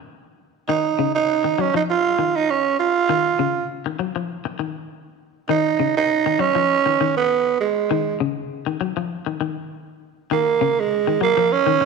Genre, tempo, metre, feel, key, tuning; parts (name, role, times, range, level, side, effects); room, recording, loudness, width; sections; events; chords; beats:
afrobeat; 100 BPM; 4/4; swing 53% on 16ths; A4 = 440 Hz
growling tenor saxophone; melody; 0.7-11.9 s; G#3 to E#4; -18 LUFS; right 8 dB
twangy electric guitar; arpeggios; 0.7-11.8 s; C#3 to F#3; -25 LUFS; left 11 dB; lush chorus
moderate echo chamber reverb, RT60 2.0 s, studio reverb; 1960s-style stereo with parts hard left and right; -18 LUFS; side -4 dB against mid
0.0-11.9 A section
0.0 C#add9
0.08 | 0.68 1.28 1.89 2.49 | 3.09 3.69 4.29 4.89 | 5.50 6.10 6.70 7.30 | 7.90 8.50 9.11 9.71 | 10.31 10.91 11.51